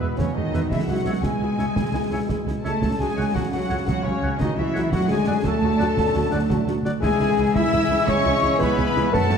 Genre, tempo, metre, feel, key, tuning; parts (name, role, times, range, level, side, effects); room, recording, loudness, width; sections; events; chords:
cinematic, heroic adventure film score; 114 BPM (dotted quarters); 12/8; straight; A4 = 440 Hz
warm symphonic violin section; melody; 0.0-9.4 s; B4 to E6; -34 LUFS; left 5 dB
bright clarinet; second line; 0.0-9.4 s; B4 to F#5; -35 LUFS; left 3 dB
clear oboe; second line; 0.0-9.4 s; E5 to A5; -37 LUFS; equal
rich symphonic violin section; second line; 0.0-9.4 s; B4 to E6; -34 LUFS; left 2 dB
silver concert flute; second line; 0.0-9.4 s; B4 to E6; -32 LUFS; left 5 dB
warm symphonic viola section; accompaniment; 0.0-9.4 s; F#3 to F#4; -31 LUFS; equal
dark French horn section; sustained chords; 0.0-9.4 s; B3 to E5; -28 LUFS; left 5 dB
warm trombone section; sustained chords; 0.0-9.4 s; B2 to B3; -30 LUFS; right 4 dB
dark trumpet section; stabs; 0.0-9.4 s; B3 to E5; -30 LUFS; left 2 dB
rich symphonic cello section; bass; 0.0-9.4 s; B2 to E4; -26 LUFS; right 2 dB
warm studio double bass section; bass; 0.0-9.4 s; C#2 to F#2; -27 LUFS; right 3 dB
concert snare drum, concert bass drum and clash cymbals; drums; 0.2-9.4 s; -29 LUFS; left 1 dB
moderate scoring stage reverb, RT60 1.9 s; dark, warm production; -19 LUFS; side -7 dB against mid
0.0-9.4 A section
0.0 E; 0.7 C#m; 2.8 F#m/C#; 4.9 D; 7.0 C#m